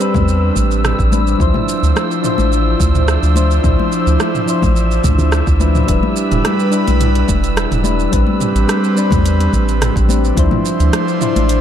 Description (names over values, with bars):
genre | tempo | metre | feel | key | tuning
sunset chillout | 107 BPM | 4/4 | straight | D dorian | A4 = 440 Hz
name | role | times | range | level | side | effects
soft electric-piano-like synth keys | accompaniment | 0.0-11.6 s | F3 to C5 | -19 LUFS | moving between left 5 dB and right 4 dB | chorus, auto-pan, ping-pong delay
airy breathy pad | sustained chords | 0.0-11.6 s | F3 to C5 | -20 LUFS | equal | chorus
deep house drum kit | drums | 0.0-11.6 s | hi-hat, rim click, shaker, toms | -22 LUFS | right 2 dB | none
wind-like tuned noise texture | texture | 0.0-11.6 s | E6 | -25 LUFS | right 1 dB | built-in reverb
round analog bass | bass | 0.1-11.6 s | E1 to E2 | -15 LUFS | equal | none
electronic kick drum | drums | 0.1-10.5 s | none | -18 LUFS | equal | none
congas | percussion | 0.1-11.5 s | none | -24 LUFS | left 5 dB | none
room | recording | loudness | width
light reverb, digital ambience | dark, warm production | -12 LUFS | side -10 dB against mid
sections
0.0-11.6 A section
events
none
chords
0.0 Am11; 1.4 Dm9; 5.9 Em7; 8.1 Am11; 10.4 Dm9